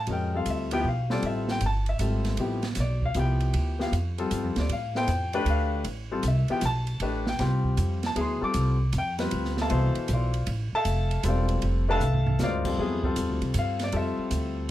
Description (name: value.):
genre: modal jazz.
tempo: 156 BPM.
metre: 3/4.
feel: swing 67% on 8ths.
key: D dorian.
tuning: A4 = 438 Hz.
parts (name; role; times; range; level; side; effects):
clear grand piano; accompaniment; 0.0-14.7 s; B2 to D6; -28 LUFS; left 3 dB; none.
upright bass; bass; 0.0-14.7 s; E1 to A2; -27 LUFS; right 1 dB; none.
open jazz drum kit; drums; 0.1-14.4 s; crash cymbal, hi-hat, kick drum, ride cymbal, snare drum, toms; -36 LUFS; right 4 dB; none.
room: light reverb.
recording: none.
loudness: -24 LUFS.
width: side -14 dB against mid.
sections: 0.0-14.7 A section.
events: drum fill 12.0-12.4.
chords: 0.0 Dm11.